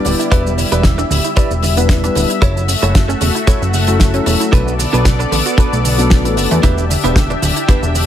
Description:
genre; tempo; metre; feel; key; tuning
nu-disco, nu disco; 114 BPM; 4/4; swing 54% on 16ths; E dorian; A4 = 440 Hz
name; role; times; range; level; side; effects
dark grand piano; accompaniment; 0.0-6.6 s; F#3 to B4; -20 LUFS; left 4 dB; sidechain pumping, ping-pong delay
lush unison pad; sustained chords; 0.0-8.1 s; G3 to E5; -20 LUFS; left 1 dB; chorus, sidechain pumping
damped 70s drum kit; drums; 0.0-8.1 s; hi-hat, shaker, snare drum; -20 LUFS; left 1 dB; studio reverb
wide unison pluck; arpeggios; 0.1-8.0 s; C#3 to F#4; -22 LUFS; right 4 dB; sidechain pumping, digital delay
direct-recorded clean electric guitar; riff; 0.1-8.0 s; D4 to D5; -21 LUFS; right 3 dB; lush chorus, ping-pong delay
fat analog bass; bass; 0.1-8.1 s; D1 to E2; -17 LUFS; equal; none
kick drum; drums; 0.3-7.8 s; none; -13 LUFS; equal; studio reverb
room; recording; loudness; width
light reverb, small room ambience; none; -11 LUFS; side -10 dB against mid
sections
0.0-8.1 A section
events
none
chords
0.0 Em7; 2.4 F#m7; 4.5 Bm7; 6.6 Em7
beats
| 0.32 0.85 1.37 1.90 | 2.42 2.95 3.48 4.00 | 4.53 5.06 5.58 6.11 | 6.63 7.16 7.69

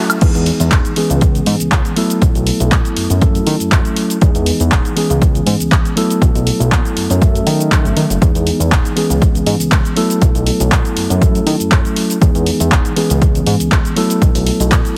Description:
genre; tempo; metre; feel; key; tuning
filtered disco house; 120 BPM; 4/4; swing 54% on 16ths; E major; A4 = 440 Hz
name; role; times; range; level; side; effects
mellow tine electric piano; accompaniment; 0.0-15.0 s; E3 to E5; -20 LUFS; equal; phaser, sidechain pumping, low-pass filter
punchy analog drum machine; drums; 0.1-14.9 s; cabasa, crash cymbal, handclaps, hi-hat, woodblock; -22 LUFS; equal; sidechain pumping on hats, sidechain pumping on cymbals, sidechain pumping on perc
fat analog bass; bass; 0.2-14.8 s; E1 to D#3; -19 LUFS; equal; sidechain pumping, low-pass filter
electronic kick drum; drums; 0.2-14.8 s; none; -15 LUFS; equal; none
room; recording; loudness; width
light reverb, digital ambience; heavily compressed radio sound, multiband compression; -14 LUFS; mono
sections
0.2-15.0 A section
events
break 0.0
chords
0.2 Emaj7; 1.0 C#m7; 2.0 B7sus4; 3.2 F#m7; 4.2 Emaj7; 5.0 C#m7; 6.0 B7sus4; 7.2 F#m7; 8.2 Emaj7; 9.0 C#m7; 10.0 B7sus4; 11.2 F#m7; 12.2 Emaj7; 13.0 C#m7; 14.0 B7sus4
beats
| 0.22 0.72 1.22 1.72 | 2.22 2.72 3.22 3.72 | 4.22 4.72 5.22 5.72 | 6.22 6.72 7.22 7.72 | 8.22 8.72 9.22 9.72 | 10.22 10.72 11.22 11.72 | 12.22 12.72 13.22 13.72 | 14.22 14.72

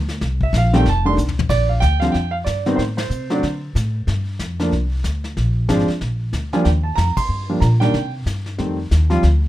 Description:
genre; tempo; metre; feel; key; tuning
jazz piano trio; 186 BPM; 4/4; swing 61% on 8ths; Bb major; A4 = 436 Hz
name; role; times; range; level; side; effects
upright bass; bass; 0.0-9.5 s; F1 to D3; -19 LUFS; equal; none
vintage brush drum kit; drums; 0.1-9.5 s; brushed snare drum, crash cymbal, hi-hat, kick drum, ride cymbal, snare drum, toms; -28 LUFS; left 2 dB; none
warm grand piano; melody; 0.4-9.2 s; D3 to C6; -19 LUFS; right 1 dB; none
room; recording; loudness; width
light reverb; minimal, uncompressed stereo recording; -17 LUFS; side -14 dB against mid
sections
0.0-1.5 A section; 1.5-9.5 B section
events
grand piano solo 0.0-1.5; drum fill 1.2-1.5; band accent 2.9, 7.1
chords
0.2 C7(no3); 0.8 F; 1.5 Bb6; 2.8 Am; 3.4 D5; 4.1 G7(no3); 5.4 Bb7; 6.7 Ebadd9; 7.9 C5; 8.6 F7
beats
| 0.21 0.53 0.85 1.17 | 1.49 1.82 2.14 2.46 | 2.78 3.10 3.43 3.75 | 4.07 4.39 4.72 5.04 | 5.36 5.68 6.01 6.33 | 6.65 6.97 7.29 7.62 | 7.94 8.26 8.59 8.91 | 9.23

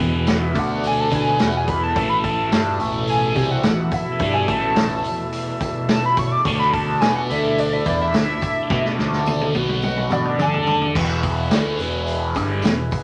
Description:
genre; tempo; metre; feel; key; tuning
psychedelic rock; 107 BPM; 4/4; straight; E mixolydian; A4 = 442 Hz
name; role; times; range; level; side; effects
tonewheel organ; sustained chords; 0.0-13.0 s; D3 to E5; -32 LUFS; equal; overdrive
fuzz guitar; riff; 0.0-12.9 s; E2 to D5; -25 LUFS; equal; distortion, phaser
modern bright picked electric bass; bass; 0.0-12.9 s; E1 to D3; -28 LUFS; equal; none
swarming drone; drone; 0.0-11.0 s; E2 to B2; -33 LUFS; equal; none
tambourine; percussion; 0.0-13.0 s; none; -45 LUFS; equal; none
hollow square lead; melody; 0.3-10.9 s; D5 to D6; -25 LUFS; equal; chorus
vintage drum kit; drums; 0.3-13.0 s; crash cymbal, hi-hat, kick drum, snare drum, toms; -26 LUFS; equal; none
room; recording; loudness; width
wet studio reverb, RT60 0.8 s; none; -20 LUFS; mono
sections
0.0-11.0 A section; 11.0-13.0 B section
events
analog synth lead solo 0.0-11.0; drum fill 8.7-11.0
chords
0.0 E; 0.6 D5; 1.1 E; 2.0 A5; 6.5 D5; 9.6 B5; 10.1 D5; 11.0 E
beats
0.28 0.84 1.40 | 1.97 2.53 3.09 3.65 | 4.21 4.77 5.33 5.90 | 6.46 7.02 7.58 8.14 | 8.71 9.27 9.83 10.39 | 10.96 11.52 12.08 12.64

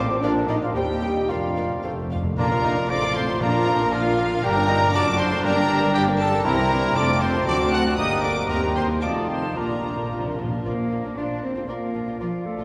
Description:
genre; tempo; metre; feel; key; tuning
quick classical-period movement for symphony orchestra; 108-122 BPM; 2/4; rubato; Bb major; A4 = 440 Hz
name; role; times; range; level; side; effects
dark studio violin section; melody; 0.0-12.6 s; F4 to F#6; -30 LUFS; equal; none
clear clarinet; second line; 0.0-12.6 s; D4 to Eb5; -34 LUFS; equal; none
dark cor anglais; second line; 0.0-12.6 s; C4 to Eb5; -36 LUFS; equal; none
silver concert flute; second line; 0.0-12.6 s; C5 to Bb5; -34 LUFS; equal; none
warm studio violin section; second line; 0.0-12.6 s; Bb3 to G5; -35 LUFS; equal; none
rich studio viola section; accompaniment; 0.0-12.6 s; D3 to F#4; -34 LUFS; equal; none
warm bassoon; accompaniment; 0.0-12.6 s; F3 to G4; -34 LUFS; equal; none
clear French horn section; sustained chords; 0.0-12.6 s; F3 to D5; -32 LUFS; equal; none
dark studio cello section; bass; 0.0-12.6 s; D2 to D4; -32 LUFS; equal; none
rich studio double bass section; bass; 0.0-12.6 s; F1 to Eb2; -32 LUFS; equal; none
timpani; percussion; 1.8-4.1, 9.6-11.1 s; F2 to Bb2; -34 LUFS; equal; none
warm trumpet; stabs; 2.4-10.1 s; F4 to F#5; -29 LUFS; equal; none
room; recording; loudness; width
wet cathedral reverb, RT60 4.9 s; recorded in a church or concert hall; -22 LUFS; mono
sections
0.0-2.4 A section; 2.4-10.7 B section; 10.7-12.6 C section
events
timpani fill 1.8-2.4, 9.6-10.7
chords
0.2 Bb; 0.8 Cm/Eb; 1.3 Bb/F; 1.8 F; 2.4 Bb; 2.9 F/A; 3.4 Bb; 4.4 Gm; 4.9 D/F#; 5.4 Gm; 6.4 C7; 7.0 F; 7.5 D7; 8.0 Gm; 8.5 Cm7/Eb; 9.0 F7; 9.6 Bb; 11.2 F5; 11.7 Bb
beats
| 0.23 0.75 | 1.29 1.84 | 2.38 2.90 | 3.41 3.93 | 4.44 4.94 | 5.43 5.94 | 6.45 6.96 | 7.47 7.98 | 8.49 9.02 | 9.56 10.11 | 10.66 11.18 | 11.69 12.20

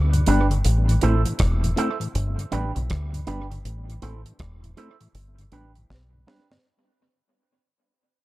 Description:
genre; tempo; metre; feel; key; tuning
roots reggae; 80 BPM; 4/4; swing 63% on 16ths; unclear; A4 = 439 Hz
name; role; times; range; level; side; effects
deep dub fingered electric bass; bass; 0.0-6.2 s; E1 to D2; -22 LUFS; equal; none
mellow tonewheel organ; accompaniment; 0.1-6.6 s; G2 to E4; -28 LUFS; left 2 dB; slow rotary speaker, dub echo
deep reggae drum kit; drums; 0.1-6.6 s; hi-hat, kick drum, rim click, snare drum; -29 LUFS; equal; dub echo
electric guitar with an envelope filter; accompaniment; 0.3-6.5 s; D4 to C5; -28 LUFS; right 4 dB; tape echo
room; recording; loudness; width
studio reverb; dark, warm production; -20 LUFS; side -18 dB against mid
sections
0.0-6.6 A section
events
fade-out 0.0-6.6; drum fill 5.9-6.6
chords
0.0 G; 0.6 Am; 2.1 G; 3.6 Am; 5.1 G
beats
| 0.65 1.40 2.15 2.90 | 3.65 4.40 5.15 5.90

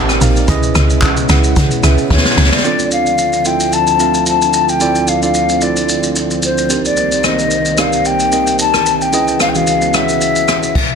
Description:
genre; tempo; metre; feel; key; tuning
amapiano; 111 BPM; 4/4; swing 55% on 16ths; unclear; A4 = 440 Hz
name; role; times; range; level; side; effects
tine electric piano; accompaniment; 0.0-10.8 s; E3 to F#5; -18 LUFS; right 7 dB; none
soft string machine; sustained chords; 0.0-10.7 s; C2 to D5; -21 LUFS; left 1 dB; ensemble chorus
woody log drum bass; bass; 0.0-2.5 s; A1 to C#3; -13 LUFS; equal; none
jazz brush drum kit; drums; 0.1-10.9 s; crash cymbal, handclaps, hi-hat, kick drum, rim click, shaker, snare drum; -16 LUFS; left 1 dB; none
breathy mellow jazz flute; melody; 2.1-11.0 s; C5 to A5; -15 LUFS; left 4 dB; ping-pong delay
room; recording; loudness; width
light reverb; dense, heavily limited modern master; -11 LUFS; side -6 dB against mid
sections
0.0-2.6 A section; 2.6-11.0 B section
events
drop 0.0-2.6; drum fill 2.1-2.6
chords
0.5 C#m9; 2.6 Dm9; 6.7 Cm9; 9.1 C#m9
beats
| 0.48 1.02 1.56 2.10 | 2.64 3.19 3.73 4.27 | 4.81 5.35 5.89 6.43 | 6.97 7.51 8.05 8.59 | 9.13 9.67 10.21 10.75

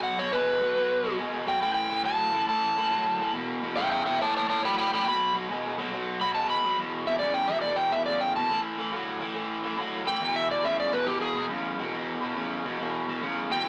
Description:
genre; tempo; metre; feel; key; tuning
blues; 140 BPM; 4/4; swing 67% on 8ths; unclear; A4 = 440 Hz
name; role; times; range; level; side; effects
overdriven slide guitar; melody; 0.0-13.7 s; G4 to B5; -28 LUFS; equal; none
raw garage guitar; riff; 0.0-13.7 s; E2 to G#3; -32 LUFS; equal; overdrive
room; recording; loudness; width
wet studio reverb, RT60 0.6 s; none; -28 LUFS; mono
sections
0.0-6.8 A section; 6.8-13.7 A section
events
electric slide guitar solo 0.0-6.8, 6.8-13.7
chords
0.0 B5; 1.6 A5; 3.3 E5; 4.2 A7; 5.1 B5; 6.8 E5; 8.5 A5; 10.2 E5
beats
0.33 0.76 1.19 | 1.61 2.05 2.48 2.91 | 3.34 3.77 4.20 4.63 | 5.06 5.49 5.92 6.34 | 6.77 7.20 7.63 8.06 | 8.49 8.92 9.35 9.78 | 10.21 10.64 11.07 11.50 | 11.93 12.36 12.78 13.21 | 13.64

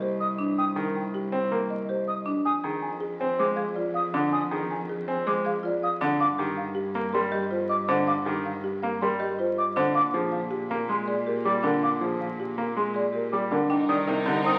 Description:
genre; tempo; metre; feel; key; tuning
classical, minimalist pattern music; 160 BPM; 5/4; straight; unclear; A4 = 440 Hz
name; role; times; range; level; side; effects
folk marimba with medium mallets; melody; 0.0-14.6 s; G4 to Ab5; -34 LUFS; equal; none
marimba with medium hard mallets; arpeggios; 0.0-14.5 s; D4 to Bb4; -33 LUFS; equal; none
warm cello; bass; 0.0-14.6 s; C2 to Bb2; -37 LUFS; equal; none
concert flute; arpeggios; 0.2-14.5 s; C6 to Eb6; -31 LUFS; equal; none
bright grand piano; accompaniment; 0.8-14.6 s; C3 to C4; -32 LUFS; equal; none
mellow French horn; second line; 13.7-14.6 s; Eb4; -36 LUFS; equal; none
rich chamber violin section; sustained chords; 13.7-14.6 s; Eb4 to Bb4; -33 LUFS; equal; none
room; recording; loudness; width
wet large studio reverb, RT60 1.4 s; very old 78 rpm record, vinyl crackle; -27 LUFS; mono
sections
0.0-13.7 A section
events
none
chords
0.0 Cm7; 2.5 Fm7; 6.2 Eb69/G; 9.9 Bb7; 13.7 Cm7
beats
0.20 | 0.57 0.95 1.32 1.70 2.08 | 2.45 2.83 3.20 3.58 3.95 | 4.33 4.70 5.08 5.45 5.83 | 6.20 6.58 6.95 7.33 7.70 | 8.07 8.45 8.82 9.20 9.57 | 9.95 10.32 10.70 11.07 11.45 | 11.82 12.20 12.57 12.95 13.32 | 13.70 14.07 14.45

